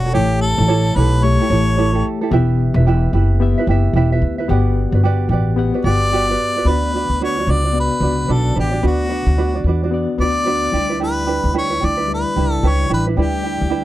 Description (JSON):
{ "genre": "acoustic pop", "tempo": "110 BPM", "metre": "4/4", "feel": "swing 60% on 16ths", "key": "unclear", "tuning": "A4 = 441 Hz", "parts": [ { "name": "clear harmonica", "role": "melody", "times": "0.0-2.0, 5.8-13.8 s", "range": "F#4 to D5", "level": "-20 LUFS", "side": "left 1 dB", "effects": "none" }, { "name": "bright reed electric piano", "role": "accompaniment", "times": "0.0-13.8 s", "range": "G3 to F#5", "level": "-24 LUFS", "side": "left 7 dB", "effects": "overdrive, fast tremolo" }, { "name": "tenor ukulele", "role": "accompaniment", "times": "0.0-13.8 s", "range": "D4 to E5", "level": "-22 LUFS", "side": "right 6 dB", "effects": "none" }, { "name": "upright bass", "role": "bass", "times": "0.0-13.8 s", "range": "E1 to E2", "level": "-17 LUFS", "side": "equal", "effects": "none" } ], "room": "little or no reverb", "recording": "dry, close 1970s-style studio recording", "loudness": "-14 LUFS", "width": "side -15 dB against mid", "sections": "0.0-6.7 A section; 6.7-13.8 B section", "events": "none", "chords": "0.1 A7; 2.3 Em; 4.5 Gmaj7; 6.7 Bm; 10.7 Em7", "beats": "| 0.15 0.69 1.23 1.78 | 2.32 2.86 3.40 3.95 | 4.49 5.03 5.58 6.12 | 6.66 7.21 7.75 8.29 | 8.84 9.38 9.92 10.47 | 11.01 11.55 12.10 12.64 | 13.19 13.73" }